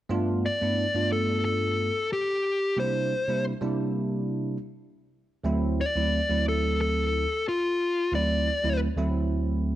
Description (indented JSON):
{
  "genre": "blues",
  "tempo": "90 BPM",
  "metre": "4/4",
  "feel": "swing 53% on 16ths",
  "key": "unclear",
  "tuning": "A4 = 440 Hz",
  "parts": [
    { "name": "barky tine electric piano", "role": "accompaniment", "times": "0.1-9.8 s", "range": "D2 to F4", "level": "-26 LUFS", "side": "right 1 dB", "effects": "analog chorus" },
    { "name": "dark smooth lead guitar", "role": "melody", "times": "0.5-8.8 s", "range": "F4 to D5", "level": "-26 LUFS", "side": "left 2 dB", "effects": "overdrive" }
  ],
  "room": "moderate echo chamber reverb, RT60 1.7 s",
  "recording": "none",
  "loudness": "-24 LUFS",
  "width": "side -14 dB against mid",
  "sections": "0.1-9.8 A section",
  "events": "none",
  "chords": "0.1 G7; 2.8 C7; 5.5 D7",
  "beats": "| 0.10 0.77 1.44 2.11 | 2.77 3.44 4.11 4.78 | 5.45 6.12 6.79 7.46 | 8.13 8.79 9.46"
}